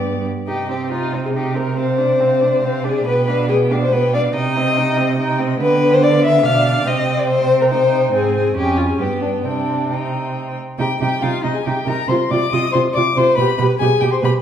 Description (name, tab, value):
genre	quick classical-period movement for string quartet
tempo	140 BPM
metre	3/4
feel	rubato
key	C minor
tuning	A4 = 440 Hz
part	rich violin	melody	0.0-14.3 s	C5 to Eb6	-26 LUFS	left 6 dB	none
part	rich violin	second line	0.0-14.3 s	D4 to F5	-18 LUFS	left 3 dB	none
part	rich viola	accompaniment	0.0-14.3 s	B3 to G4	-22 LUFS	right 2 dB	none
part	rich cello	bass	0.0-14.3 s	F2 to D3	-20 LUFS	right 3 dB	none
room	wet recital hall reverb, RT60 1.3 s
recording	heard from further back in the room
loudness	-15 LUFS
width	side -9 dB against mid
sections	0.5-10.8 A section; 10.8-14.4 A section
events	none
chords	0.5 Cm; 1.8 Csus24; 3.1 G7/B; 4.4 Cm; 5.6 Bdim/D; 6.9 Cm; 8.1 Ab; 8.6 Db/F; 9.0 G; 9.4 Cm; 12.1 Csus24; 13.4 G/B